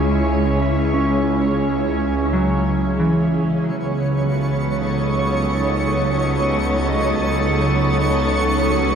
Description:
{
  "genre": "ambient",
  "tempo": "70 BPM",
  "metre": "4/4",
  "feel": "straight",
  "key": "unclear",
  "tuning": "A4 = 441 Hz",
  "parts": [
    { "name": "soft additive organ-like pad", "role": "sustained chords", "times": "0.0-9.0 s", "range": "C#3 to A4", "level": "-19 LUFS", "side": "right 1 dB", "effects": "ensemble chorus, built-in reverb" },
    { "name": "mellow electric guitar", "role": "arpeggios", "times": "0.0-9.0 s", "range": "E3 to C#6", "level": "-24 LUFS", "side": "equal", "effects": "ping-pong delay" },
    { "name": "rich symphonic cello section", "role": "bass", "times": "0.0-9.0 s", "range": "C#2", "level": "-23 LUFS", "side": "equal", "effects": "none" },
    { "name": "twinkling granular texture", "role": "texture", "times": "3.8-9.0 s", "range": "C#5 to C#6", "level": "-23 LUFS", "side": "right 1 dB", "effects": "built-in reverb" }
  ],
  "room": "wet cathedral reverb, RT60 6.0 s",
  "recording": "dark, warm production",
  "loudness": "-17 LUFS",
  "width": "side -7 dB against mid",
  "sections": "0.0-9.0 A section",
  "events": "fade-out on clean electric guitar 0.0-9.0",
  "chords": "0.0 C#m; 3.5 B9/C#"
}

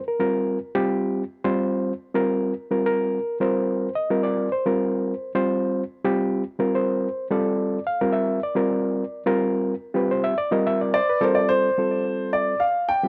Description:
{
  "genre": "jazz",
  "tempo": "215 BPM (eighths)",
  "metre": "7/8",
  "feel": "straight",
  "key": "unclear",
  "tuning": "A4 = 442 Hz",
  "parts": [
    { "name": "overdriven reed electric piano", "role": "accompaniment", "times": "0.0-13.1 s", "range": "G3 to F5", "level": "-24 LUFS", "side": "equal", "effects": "plate reverb" },
    { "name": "dark grand piano", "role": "melody", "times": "10.9-13.1 s", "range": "C5 to G5", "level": "-23 LUFS", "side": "equal", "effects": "plate reverb" }
  ],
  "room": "moderate booth ambience, RT60 0.2 s",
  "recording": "none",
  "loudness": "-23 LUFS",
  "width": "mono",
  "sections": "0.0-11.8 A section; 11.8-13.1 B section",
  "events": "none",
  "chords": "0.0 C9sus4; 11.8 Fadd9"
}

